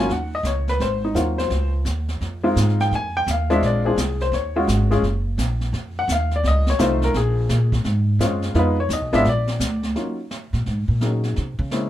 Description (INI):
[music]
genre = jazz piano trio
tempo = 171 BPM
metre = 4/4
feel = swing 65% on 8ths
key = Bb minor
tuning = A4 = 439 Hz
[part]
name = warm baby grand piano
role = melody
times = 0.0-11.9 s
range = Gb3 to Ab5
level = -21 LUFS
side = left 2 dB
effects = none
[part]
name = upright bass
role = bass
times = 0.0-11.9 s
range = Gb1 to Db3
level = -21 LUFS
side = equal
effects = none
[part]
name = jazz brush drum kit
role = drums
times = 0.1-11.9 s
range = brushed snare drum, hi-hat, kick drum, snare drum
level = -30 LUFS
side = right 1 dB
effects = none
[sound]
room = light reverb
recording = minimal, uncompressed stereo recording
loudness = -18 LUFS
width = side -12 dB against mid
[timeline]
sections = 0.0-10.0 A section; 10.0-11.9 A section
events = grand piano solo 0.0-10.0; upright bass solo 10.0-11.9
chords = 0.1 Dbsus4; 0.8 Ab13; 1.5 Dbmaj9; 2.9 Fm7; 3.6 Bb7; 4.3 Ebm11; 5.7 F7; 7.1 Bbm7; 8.6 Fm7b5; 9.3 Bb; 10.0 Ebm7; 11.4 Bbm7b5